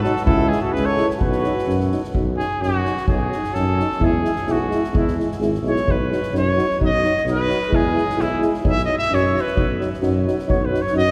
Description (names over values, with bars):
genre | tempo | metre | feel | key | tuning
balkan folk, Balkan brass band | 129 BPM | 2/4 | straight | B mixolydian | A4 = 441 Hz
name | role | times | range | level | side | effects
warm trumpet | melody | 0.0-11.1 s | E4 to E5 | -25 LUFS | equal | none
warm flugelhorn | second line | 0.0-1.9 s | E4 to A4 | -28 LUFS | equal | none
mellow euphonium | accompaniment | 0.0-11.1 s | F#3 to G#3 | -29 LUFS | equal | none
warm euphonium | accompaniment | 0.0-11.0 s | D#4 to E4 | -28 LUFS | equal | none
mellow tuba | bass | 0.0-11.1 s | G#1 to F#2 | -26 LUFS | equal | none
soft-mallet drum kit | percussion | 0.0-11.0 s | kick drum, snare drum | -28 LUFS | equal | none
room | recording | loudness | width
wet cathedral reverb, RT60 4.9 s | recorded in a church or concert hall | -20 LUFS | mono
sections
0.0-2.1 A section; 2.1-11.1 B section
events
trumpet solo 2.1-11.1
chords
0.3 C#m; 1.2 B; 4.0 E; 5.9 B; 7.7 E; 8.7 B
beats
| 0.27 0.74 | 1.20 1.67 | 2.14 2.60 | 3.07 3.54 | 4.01 4.47 | 4.94 5.41 | 5.87 6.34 | 6.80 7.26 | 7.73 8.19 | 8.65 9.12 | 9.58 10.04 | 10.50 10.96